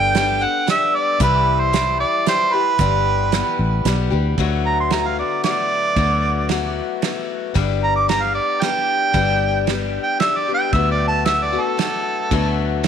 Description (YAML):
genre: folk rock and heartland rock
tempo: 113 BPM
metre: 3/4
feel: straight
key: G major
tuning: A4 = 440 Hz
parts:
  - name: mellow harmonica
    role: melody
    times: 0.0-12.6 s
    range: A4 to D6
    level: -19 LUFS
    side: right 3 dB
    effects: tape echo
  - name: picked acoustic archtop guitar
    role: accompaniment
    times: 0.0-12.9 s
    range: G2 to A4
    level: -23 LUFS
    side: left 13 dB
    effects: none
  - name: fingered electric bass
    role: bass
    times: 0.0-12.9 s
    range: G1 to D2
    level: -21 LUFS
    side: equal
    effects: none
  - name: natural country drum kit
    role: drums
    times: 0.1-12.9 s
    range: hi-hat, kick drum, ride cymbal, snare drum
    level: -25 LUFS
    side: right 6 dB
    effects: none
room: light reverb, studio ambience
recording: 1960s-style stereo with parts hard left and right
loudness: -16 LUFS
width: side -8 dB against mid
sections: 0.0-4.4 A section; 4.4-12.9 B section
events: harmonica solo 4.4-12.9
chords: 0.0 Gadd9; 1.2 C; 2.8 G6; 4.4 D6; 7.6 G; 10.7 D6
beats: 0.15 0.68 | 1.21 1.74 2.27 | 2.80 3.33 3.85 | 4.38 4.91 5.44 | 5.97 6.50 7.03 | 7.56 8.09 8.62 | 9.15 9.68 10.21 | 10.74 11.27 11.79 | 12.32 12.85